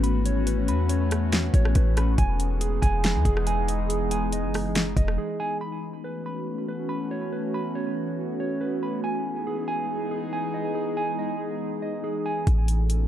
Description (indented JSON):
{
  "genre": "hip hop, atmospheric cloud-rap",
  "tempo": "140 BPM",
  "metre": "4/4",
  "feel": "half-time",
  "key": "A lydian",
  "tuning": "A4 = 441 Hz",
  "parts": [
    { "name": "warbly tape-like pad", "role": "sustained chords", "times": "0.0-13.1 s", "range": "E3 to A4", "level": "-29 LUFS", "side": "left 2 dB", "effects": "chorus, built-in reverb, phaser, sidechain pumping" },
    { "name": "mellow electric guitar", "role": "arpeggios", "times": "0.0-12.5 s", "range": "G#4 to B5", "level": "-31 LUFS", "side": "right 3 dB", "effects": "tape echo" },
    { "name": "warm 808-style bass", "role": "bass", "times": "0.0-5.2, 12.5-13.1 s", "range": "E1 to E2", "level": "-24 LUFS", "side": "equal", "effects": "none" },
    { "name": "smooth R&B drum kit", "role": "drums", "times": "0.0-5.2, 12.5-13.0 s", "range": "hi-hat, kick drum, rim click, snare drum", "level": "-25 LUFS", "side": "equal", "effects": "overdrive" }
  ],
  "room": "digital ambience",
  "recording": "dark, warm production",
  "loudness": "-23 LUFS",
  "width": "side -11 dB against mid",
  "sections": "0.0-5.6 A section; 5.6-12.5 B section",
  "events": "break 5.2-5.6",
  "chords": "0.0 A69; 2.2 Emaj7; 5.6 A69; 9.0 Emaj7; 12.5 A69"
}